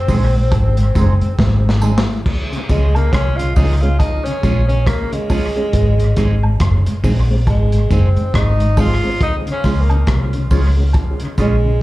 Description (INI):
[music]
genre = roots reggae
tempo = 69 BPM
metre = 4/4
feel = swing 60% on 16ths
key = Db major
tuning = A4 = 440 Hz
[part]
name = warm tenor saxophone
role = melody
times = 0.0-11.8 s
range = Ab3 to F4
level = -23 LUFS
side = equal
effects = dub echo, plate reverb, slapback echo
[part]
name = clean electric guitar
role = accompaniment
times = 0.1-11.6 s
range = Ab3 to Ab4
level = -28 LUFS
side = right 5 dB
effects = phaser, dub echo, plate reverb, slapback echo
[part]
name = mellow tonewheel organ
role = accompaniment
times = 0.1-11.7 s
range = Ab2 to Db4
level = -24 LUFS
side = left 1 dB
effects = chorus vibrato, slow rotary speaker, dub echo
[part]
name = vintage muted fingered electric bass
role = bass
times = 0.1-11.8 s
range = Gb1 to Db2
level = -14 LUFS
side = equal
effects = none
[part]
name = crunchy breakbeat drum kit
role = drums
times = 0.1-11.6 s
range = crash cymbal, hi-hat, kick drum, rim click, snare drum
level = -19 LUFS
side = equal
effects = dub echo
[part]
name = tambourine and woodblock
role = percussion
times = 0.1-11.6 s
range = none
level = -30 LUFS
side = right 1 dB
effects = slapback echo
[sound]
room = light reverb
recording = live gig heard through the venue's PA, club reverb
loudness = -13 LUFS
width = side -18 dB against mid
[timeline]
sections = 0.0-2.3 A section; 2.3-11.8 B section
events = drum fill 1.4-2.3; tenor saxophone solo 2.3-11.8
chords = 0.0 Ab; 2.3 Db; 5.7 Ab; 9.2 Db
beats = 0.52 1.39 | 2.26 3.12 3.99 4.86 | 5.73 6.60 7.47 8.34 | 9.21 10.08 10.95 11.81